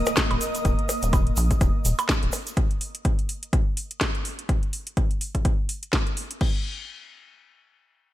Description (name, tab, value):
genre	minimal techno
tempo	125 BPM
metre	4/4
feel	swing 57% on 16ths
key	unclear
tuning	A4 = 440 Hz
part	impact	sound effects	0.0-0.7 s	none	-44 LUFS	equal	none
part	ethereal airy pad	texture	0.0-0.7 s	Bb3 to Eb6	-30 LUFS	equal	ensemble chorus, built-in reverb, sidechain pumping
part	garage drum kit	drums	0.1-6.5 s	crash cymbal, hi-hat, snare drum	-28 LUFS	equal	none
part	percussion blips	percussion	0.1-2.4 s	none	-30 LUFS	right 1 dB	digital delay
part	tube shaker	percussion	0.1-2.5 s	none	-35 LUFS	right 3 dB	none
part	electronic kick drum	drums	0.2-6.5 s	none	-23 LUFS	equal	none
part	rubbery square bass	bass	0.3-2.3 s	Eb1 to Bb1	-24 LUFS	equal	tube saturation, sidechain pumping
room	light reverb, digital ambience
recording	bright 1980s-style digital production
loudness	-22 LUFS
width	side -15 dB against mid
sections	0.0-6.4 A section; 6.4-8.1 B section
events	impact 0.0-0.7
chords	0.0 Eb5; 6.4 N.C.